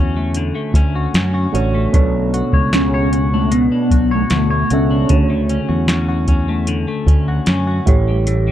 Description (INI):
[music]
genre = indie pop, bedroom pop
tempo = 76 BPM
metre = 4/4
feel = straight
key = D major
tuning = A4 = 438 Hz
[part]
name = clean electric guitar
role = accompaniment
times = 0.0-8.5 s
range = A2 to C#5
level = -21 LUFS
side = left 3 dB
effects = analog chorus, vibrato effect
[part]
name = reed electric piano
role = accompaniment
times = 0.0-8.5 s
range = D3 to E5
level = -25 LUFS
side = right 6 dB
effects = cassette tape
[part]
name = fretless electric bass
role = bass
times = 0.0-8.5 s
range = A1 to F#2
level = -18 LUFS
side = equal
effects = none
[part]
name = soft vintage rhythm box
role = drums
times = 0.3-8.5 s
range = hi-hat, kick drum, snare drum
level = -15 LUFS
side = equal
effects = overdrive
[part]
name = warbly nostalgic lead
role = melody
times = 2.7-6.3 s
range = A3 to C#4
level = -19 LUFS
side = equal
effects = ensemble chorus, tape echo
[sound]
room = little or no reverb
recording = dry, close 1970s-style studio recording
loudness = -13 LUFS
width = side -12 dB against mid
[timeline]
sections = 0.0-8.5 A section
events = none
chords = 0.0 Dmaj7; 1.9 Bm9; 5.1 Dmaj7; 7.9 A7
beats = 0.35 1.15 | 1.94 2.73 3.52 4.31 | 5.10 5.89 6.68 7.47 | 8.27